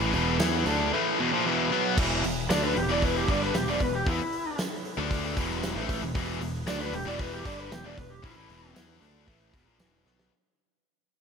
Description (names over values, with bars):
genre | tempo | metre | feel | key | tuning
classic rock | 115 BPM | 4/4 | straight | E mixolydian | A4 = 440 Hz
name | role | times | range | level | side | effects
tonewheel organ | sustained chords | 0.0-10.3 s | B3 to B4 | -42 LUFS | equal | none
biting overdriven guitar | riff | 0.0-10.3 s | E2 to E4 | -32 LUFS | right 11 dB | none
tight distorted guitar | riff | 0.0-10.3 s | E2 to E4 | -30 LUFS | left 13 dB | distortion
modern bright picked electric bass | bass | 0.0-10.3 s | E1 to E2 | -33 LUFS | equal | none
big rock drum kit | drums | 0.1-10.3 s | crash cymbal, hi-hat, kick drum, snare drum | -32 LUFS | right 1 dB | none
tambourine | percussion | 0.4-9.9 s | none | -44 LUFS | right 15 dB | none
lead guitar through a small cranked amp | melody | 2.5-8.7 s | E4 to D5 | -32 LUFS | left 1 dB | overdrive
room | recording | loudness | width
light reverb, small room ambience | none | -25 LUFS | side -6 dB against mid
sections
0.0-2.0 A section; 2.0-10.3 B section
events
fade-out 2.0-10.3; lead electric guitar solo 2.0-10.3; drum fill 10.1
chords
0.0 E